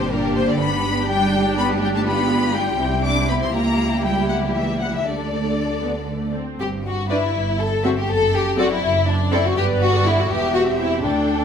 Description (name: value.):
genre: quick classical-period movement for string orchestra.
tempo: 81 BPM (dotted quarters).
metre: 6/8.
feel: straight.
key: G major.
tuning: A4 = 440 Hz.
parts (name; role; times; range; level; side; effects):
rich studio violin section; melody; 0.0-11.4 s; Bb4 to D6; -25 LUFS; left 5 dB; none.
rich studio violin section; second line; 0.0-11.4 s; D4 to A4; -22 LUFS; left 3 dB; none.
warm studio viola section; accompaniment; 0.0-11.4 s; G3 to B4; -25 LUFS; right 2 dB; none.
warm studio cello section; bass; 0.0-11.4 s; D2 to D4; -24 LUFS; right 2 dB; none.
warm studio double bass section; bass; 0.0-11.4 s; E1 to D2; -26 LUFS; right 3 dB; none.
room: wet recital hall reverb, RT60 1.4 s.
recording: none.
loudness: -18 LUFS.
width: side -7 dB against mid.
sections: 0.0-6.6 A section; 6.6-11.4 B section.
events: none.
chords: 0.0 Gm; 0.6 G; 2.1 G7; 2.8 C; 3.5 C#dim7; 5.1 Dsus4; 5.8 D5; 6.6 G; 7.3 Am7/G; 8.1 D7/F#; 9.6 G; 10.3 Em.